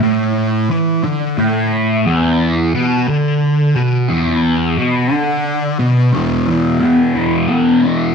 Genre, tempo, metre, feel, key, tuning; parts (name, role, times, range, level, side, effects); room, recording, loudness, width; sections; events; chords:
rock; 59 BPM (dotted quarters); 6/8; straight; A4 = 440 Hz
thick fuzz guitar; solo; 0.0-8.1 s; E2 to E3; -12 LUFS; equal; distortion, phaser
wet echo chamber reverb, RT60 1.3 s; -13 LUFS; side -5 dB against mid
0.0-6.1 A section; 6.1-8.1 B section
0.0 A5; 2.1 E5